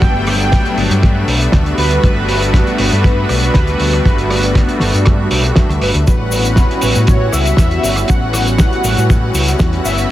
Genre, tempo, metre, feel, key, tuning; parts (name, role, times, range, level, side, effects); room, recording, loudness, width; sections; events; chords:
nu-disco, nu disco; 119 BPM; 4/4; straight; A4 = 440 Hz
wide unison lead; melody; 0.0-10.1 s; B4 to G5; -21 LUFS; right 1 dB; wide subtle chorus, cassette tape, tape echo
warm analog pad; accompaniment; 0.0-10.1 s; F#3 to F#4; -18 LUFS; left 1 dB; chorus, vintage 12-bit sampler grit, sidechain pumping
bright studio string section; sustained chords; 0.0-10.1 s; A3 to F#5; -26 LUFS; left 1 dB; sidechain pumping
hollow-body short-scale fingered electric bass; bass; 0.0-10.0 s; G1 to A2; -16 LUFS; equal
cloth-damped thuddy drum kit; drums; 0.0-10.1 s; hi-hat, rim click, snare drum; -19 LUFS; right 1 dB
kick drum; drums; 0.0-9.7 s; -14 LUFS; equal
tube shaker; percussion; 6.1-10.1 s; -26 LUFS; left 4 dB
studio ambience; -11 LUFS; side -14 dB against mid
0.0-10.1 A section
0.0 Gmaj7; 6.1 A13